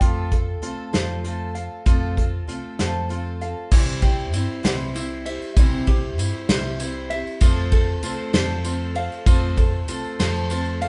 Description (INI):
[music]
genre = indie folk with a building arrangement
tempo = 65 BPM (dotted quarters)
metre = 6/8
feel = straight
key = C major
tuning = A4 = 440 Hz
[part]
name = picked twelve-string acoustic guitar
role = accompaniment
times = 0.0-10.9 s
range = C3 to C5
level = -31 LUFS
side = equal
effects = none
[part]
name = ukulele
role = arpeggios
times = 0.0-10.9 s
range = E4 to F5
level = -33 LUFS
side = equal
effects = analog delay
[part]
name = hollow-body short-scale fingered electric bass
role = bass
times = 0.0-10.9 s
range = C2 to G2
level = -29 LUFS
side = equal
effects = none
[part]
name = unplugged drum kit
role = drums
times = 0.0-10.9 s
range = crash cymbal, hi-hat, kick drum, ride cymbal, snare drum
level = -23 LUFS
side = equal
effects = none
[part]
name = tambourine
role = percussion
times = 3.7-10.7 s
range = none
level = -41 LUFS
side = equal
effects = none
[sound]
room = moderate studio reverb, RT60 0.8 s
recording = band playing live in one room, nothing above 10.6 kHz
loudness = -22 LUFS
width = mono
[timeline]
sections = 0.0-3.7 A section; 3.7-10.9 A section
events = none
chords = 0.0 F; 3.7 C; 7.4 F